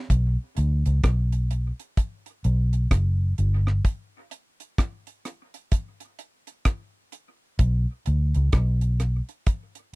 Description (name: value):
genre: dub reggae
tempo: 64 BPM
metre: 4/4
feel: swing 61% on 16ths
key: B minor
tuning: A4 = 439 Hz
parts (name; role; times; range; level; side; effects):
- vintage muted fingered electric bass; bass; 0.1-9.2 s; F#1 to D2; -21 LUFS; equal; none
- deep reggae drum kit; drums; 0.1-9.9 s; hi-hat, kick drum, rim click; -23 LUFS; equal; none
room: little or no reverb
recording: dry, close 1970s-style studio recording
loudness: -22 LUFS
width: side -25 dB against mid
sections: 0.1-9.9 A section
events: break 3.8-7.6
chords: none